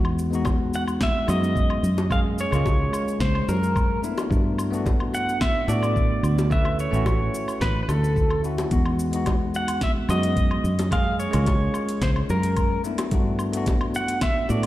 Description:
sunset chillout; 109 BPM; 4/4; straight; E major; A4 = 442 Hz
bell-like tine electric piano; accompaniment; 0.0-14.7 s; G#3 to B4; -28 LUFS; moving between left 5 dB and right 5 dB; auto-pan, tape echo
fingered electric bass; bass; 0.0-14.7 s; A1 to A2; -24 LUFS; equal
deep house drum kit; drums; 0.0-14.7 s; hi-hat, shaker, snare drum, woodblock; -33 LUFS; left 1 dB; overdrive
bongos; percussion; 0.4-14.6 s; -33 LUFS; left 2 dB
electronic kick drum; drums; 0.5-14.3 s; -24 LUFS; equal
pedal steel guitar; melody; 0.8-14.7 s; A4 to F#5; -28 LUFS; equal; tape echo
light reverb, digital ambience; played on a big sound system in a bare room, stone room reverb; -20 LUFS; side -15 dB against mid
0.0-14.7 A section
0.0 Emaj9; 1.8 F#maj9; 4.0 Gmaj9; 6.5 Dmaj9; 8.7 Emaj9; 10.6 F#maj9; 12.8 Gmaj9

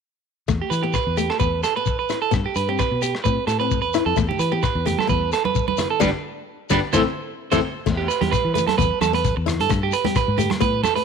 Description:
highlife guitar band; 130 BPM; 4/4; swing 55% on 16ths; E minor; A4 = 440 Hz
flamenco guitar; accompaniment; 0.5-11.0 s; E3 to E4; -26 LUFS; left 12 dB
fingered electric bass; bass; 0.5-10.8 s; G1 to G3; -25 LUFS; left 2 dB
crunchy breakbeat drum kit; drums; 0.5-11.0 s; crash cymbal, hi-hat, kick drum, rim click, snare drum; -28 LUFS; left 2 dB
shekere; percussion; 0.5-11.0 s; -27 LUFS; left 10 dB
electric guitar at the edge of break-up; arpeggios; 0.6-11.0 s; D4 to C5; -22 LUFS; right 9 dB; slapback echo
congas; percussion; 4.3-11.0 s; -28 LUFS; right 9 dB
light reverb, small room ambience; 1960s-style stereo with parts hard left and right; -19 LUFS; side -6 dB against mid
0.5-7.9 A section; 7.9-11.0 B section
band accent 6.0-7.9; drum fill 7.6
0.5 Em; 2.3 G; 3.3 Am; 4.2 Em; 6.0 G; 6.9 Am; 7.9 Em; 9.7 G

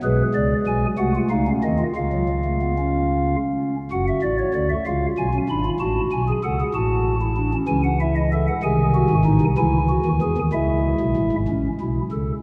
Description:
classical, baroque-style 4-part fugue for pipe organ; 63 BPM (dotted quarters); 6/8; straight; F# minor; A4 = 441 Hz
pipe organ, stopped flute; solo; 0.0-12.3 s; F#1 to B5; -21 LUFS; equal
wet cathedral reverb, RT60 4.6 s; -21 LUFS; mono
0.0-3.9 A section; 3.9-11.5 B section
0.0 G#dim/B; 1.0 Cdim7; 2.0 C#; 3.9 F#m; 4.9 C#7; 5.8 F#m/A; 7.7 C#m; 8.6 G#7/B#; 9.6 C#m; 11.5 A

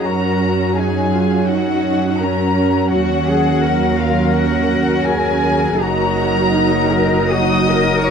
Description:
classical, slow romantic movement for string orchestra; 83 BPM; 4/4; rubato; A4 = 443 Hz
warm chamber violin section; melody; 0.0-8.1 s; F5 to Eb6; -22 LUFS; left 4 dB
warm chamber violin section; second line; 0.0-8.1 s; F4 to Eb5; -23 LUFS; left 4 dB
warm chamber viola section; accompaniment; 0.0-8.1 s; Gb3 to Eb4; -18 LUFS; right 1 dB
clear chamber double bass section; bass; 0.0-8.1 s; Gb1 to Gb2; -20 LUFS; right 4 dB
rich chamber cello section; bass; 0.0-8.1 s; Db4 to Bb4; -22 LUFS; equal
moderate recital hall reverb, RT60 1.8 s; dark, warm production; -14 LUFS; side -6 dB against mid
0.0-8.1 A section
0.0 Gb; 2.9 Ebm7; 5.8 Ebm/Gb

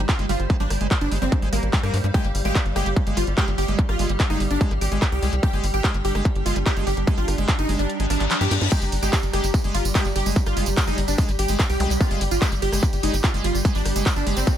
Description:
psychedelic trance; 146 BPM; 4/4; straight; G phrygian; A4 = 439 Hz
swarming drone; sustained chords; 0.0-14.6 s; G3 to C5; -31 LUFS; right 2 dB; built-in reverb, sidechain pumping
tight sequencer bass; bass; 0.0-14.4 s; G1 to G2; -24 LUFS; equal
granular cloud pad; texture; 0.0-14.6 s; G4 to Bb5; -34 LUFS; equal; built-in reverb, sidechain pumping
supersaw stab; melody; 0.1-14.5 s; Bb3 to G4; -28 LUFS; right 1 dB; phaser, sidechain pumping, tape echo
electronic kick drum; drums; 0.1-14.6 s; -21 LUFS; equal; distortion, overdrive
techno drum kit; drums; 0.1-14.6 s; crash cymbal, handclaps, hi-hat, ride cymbal, rim click, snare drum; -29 LUFS; equal; overdrive
liquid acid bass; riff; 0.2-14.4 s; F3 to G4; -31 LUFS; moving between left 6 dB and right 7 dB; chorus, auto-pan, sidechain pumping, digital delay
reverse cymbal and zap; sound effects; 8.0-8.7, 11.8-11.9 s; -30 LUFS; left 5 dB
tambourine; percussion; 8.7-14.6 s; -33 LUFS; right 5 dB
digital ambience; -19 LUFS; side -10 dB against mid
0.0-14.6 A section
kick drops out 7.9-8.7; reverse cymbal 8.0-8.7; drum fill 8.4-8.7
0.0 G5

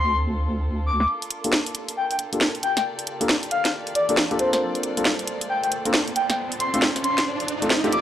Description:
UK garage, two-step garage; 136 BPM; 4/4; swing 62% on 16ths; G minor; A4 = 440 Hz
breathy flute-like synth lead; melody; 0.0-8.0 s; C5 to D6; -25 LUFS; left 2 dB; wide subtle chorus, tape echo
dark studio violin section; sustained chords; 0.0-8.0 s; Bb3 to D5; -34 LUFS; equal
deep soft wobble bass; bass; 0.0-1.1 s; D2; -23 LUFS; equal; chorus
garage drum kit; drums; 1.0-8.0 s; hi-hat, snare drum; -23 LUFS; equal; high-pass filter on snare, low-pass filter on snare, high-pass filter on hats, low-pass filter on hats
riser; sound effects; 4.0-8.0 s; -31 LUFS; right 4 dB
warm grand piano; stabs; 1.4-8.0 s; A3 to A4; -27 LUFS; left 1 dB; vintage 12-bit sampler grit, low-pass filter, tape echo
light reverb; dry, gritty hardware recording, transformer saturation, cassette tape; -20 LUFS; side -11 dB against mid
0.0-1.1 A section; 1.1-8.0 B section
build-up 1.1-8.0; filter sweep on grand piano 1.1-8.0; riser 4.0-8.0
0.0 Dm7; 1.1 Gm9/Bb; 4.4 Bbmaj9; 6.2 Dm7

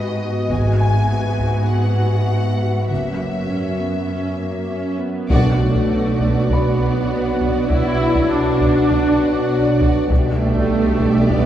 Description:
cinematic, suspense film score; 100 BPM; 4/4; straight; B minor from 5.3 s; A4 = 442 Hz
rich studio violin section; melody; 0.0-11.5 s; D#5 to G#5; -30 LUFS; left 2 dB
clear symphonic viola section; accompaniment; 0.0-11.5 s; A3 to F#4; -22 LUFS; right 1 dB
glass harmonica; sustained chords; 0.0-11.5 s; F#4 to D#6; -27 LUFS; left 1 dB
rich symphonic cello section; bass; 0.0-11.5 s; F#2 to B2; -22 LUFS; right 1 dB
dark grand piano; texture; 0.0-2.9, 6.5-10.1 s; B4 to B5; -34 LUFS; left 1 dB
clear symphonic double bass section; bass; 0.5-11.5 s; F#1 to B1; -23 LUFS; right 2 dB
taiko ensemble; drums; 0.5-1.7, 5.3-11.5 s; -22 LUFS; equal
warm symphonic violin section; second line; 5.3-11.5 s; F#4 to D5; -26 LUFS; equal
mellow French horn section; sustained chords; 5.3-11.5 s; F#3 to D4; -22 LUFS; left 1 dB
wet church reverb, RT60 3.3 s; heard from further back in the room; -16 LUFS; side -11 dB against mid
0.0-5.3 A section; 5.3-11.5 B section
band accent 5.3-5.9
0.0 G#m7; 0.5 Eadd9/G#; 2.9 F#7; 5.3 Bm; 10.1 Em7/B

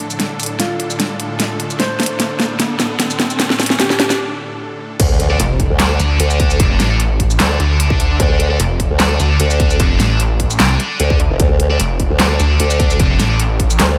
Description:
heavy wobble dubstep; 150 BPM; 4/4; half-time; D minor; A4 = 440 Hz
supersaw chords; sustained chords; 0.0-5.0 s; A2 to A4; -27 LUFS; equal; sidechain pumping
dubstep drum kit; drums; 0.0-13.9 s; crash cymbal, handclaps, hi-hat, shaker, snare drum; -20 LUFS; equal; overdrive, studio reverb
riser and impact; sound effects; 0.1-6.6 s; -28 LUFS; equal
clear grand piano; melody; 0.6-4.2 s; F4 to C5; -26 LUFS; equal; low-pass filter, tape echo
formant-sweep wobble bass; bass; 5.0-14.0 s; F1 to D2; -18 LUFS; equal; chorus, overdrive
electronic kick drum; drums; 5.0-13.7 s; -19 LUFS; equal; distortion, studio reverb
high-gain distorted guitar; stabs; 5.3-13.4 s; D4 to D5; -24 LUFS; equal; distortion, tape echo
snarling distorted saw bass; bass; 5.4-13.8 s; F1 to D2; -18 LUFS; equal; distortion, overdrive
light reverb; -15 LUFS; mono
0.0-5.0 A section; 5.0-14.0 B section
build-up 0.0-5.0; drum fill 0.0-4.2; riser 0.1-4.2; break 4.2-5.0; drop 5.0-14.0; impact 5.0-6.6
0.0 D5

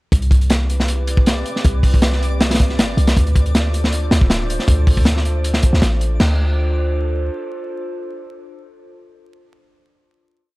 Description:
drum and bass, jungle; 158 BPM; 4/4; straight; D dorian; A4 = 442 Hz
warbly tape-like pad; sustained chords; 0.4-9.3 s; C4 to C5; -28 LUFS; right 1 dB; chorus, built-in reverb
warm 808-style bass; bass; 0.1-7.3 s; D1 to D2; -17 LUFS; equal
crunchy breakbeat drum kit; drums; 0.1-6.3 s; crash cymbal, hi-hat, kick drum, snare drum; -16 LUFS; equal
twinkling granular texture; texture; 0.5-6.2 s; D5 to D6; -33 LUFS; left 1 dB; built-in reverb
studio ambience; vinyl crackle; -14 LUFS; side -21 dB against mid
0.1-6.2 drop; 6.2-9.2 final chord
drop 0.1-6.2
0.1 Cmaj7; 3.2 Dm7

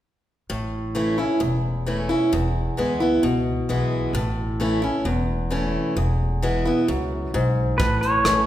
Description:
honky-tonk and classic country; 132 BPM; 4/4; straight; A major; A4 = 440 Hz
picked acoustic archtop guitar; accompaniment; 0.5-8.5 s; E2 to E4; -22 LUFS; equal
upright bass; bass; 0.5-8.5 s; E1 to D2; -25 LUFS; equal
pedal steel guitar; melody; 7.8-8.4 s; B4 to C#5; -19 LUFS; equal
soft brush drum kit; drums; 7.8-8.4 s; hi-hat, kick drum, rim click; -24 LUFS; equal
wet recital hall reverb, RT60 1.8 s; recorded in a church or concert hall; -20 LUFS; side -12 dB against mid
0.5-7.8 A section
0.5 A; 2.3 E; 4.1 A; 6.0 E; 7.8 A

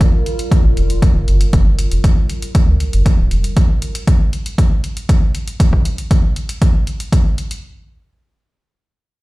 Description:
acid house; 118 BPM; 4/4; straight; G minor; A4 = 436 Hz
warbly tape-like pad; sustained chords; 0.0-3.5 s; G3 to Bb4; -28 LUFS; equal; chorus, built-in reverb, phaser, sidechain pumping
electronic hi-hat; drums; 0.0-7.6 s; -30 LUFS; left 1 dB; overdrive
electronic kick drum; drums; 0.0-7.2 s; -12 LUFS; equal; overdrive
round analog bass; bass; 0.6-3.5 s; D1 to D2; -15 LUFS; equal; sidechain pumping
small room ambience; played on a big sound system in a bare room, large studio reverb; -13 LUFS; side -20 dB against mid
0.0-7.6 A section
filter sweep on analog synth bass 0.0-3.6
0.0 Gm7

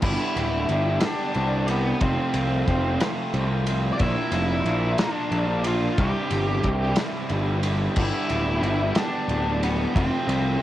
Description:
quiet-loud alternative rock; 60 BPM (dotted quarters); 6/8; straight; A4 = 442 Hz
octave-fuzz lead guitar; melody; 0.0-10.6 s; B3 to G5; -27 LUFS; equal; distortion, cassette tape
fuzz guitar; riff; 0.0-10.6 s; C2 to Bb4; -32 LUFS; left 8 dB; distortion, cassette tape
thick fuzz guitar; riff; 0.0-10.6 s; C2 to Bb4; -30 LUFS; right 7 dB; distortion, cassette tape
fuzz picked electric bass; bass; 0.0-10.6 s; D1 to C2; -25 LUFS; equal; overdrive
loose indie drum kit; drums; 0.0-10.4 s; crash cymbal, kick drum, ride cymbal, snare drum; -28 LUFS; equal; cassette tape
little or no reverb; home recording on cassette; -21 LUFS; side -13 dB against mid
0.0-10.6 A section
0.0 G; 2.0 F; 4.0 Bb; 6.0 C; 8.0 G; 9.9 F

